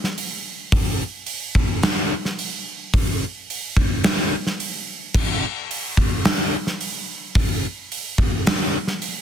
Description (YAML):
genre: rock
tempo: 109 BPM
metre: 4/4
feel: straight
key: none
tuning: none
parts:
  - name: gated 80s drum kit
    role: drums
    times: 0.0-9.1 s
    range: crash cymbal, hi-hat, kick drum, snare drum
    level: -20 LUFS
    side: equal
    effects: none
room: moderate concert hall reverb, RT60 1.9 s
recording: dense, heavily limited modern master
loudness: -20 LUFS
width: side -9 dB against mid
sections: 0.0-9.2 A section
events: none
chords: none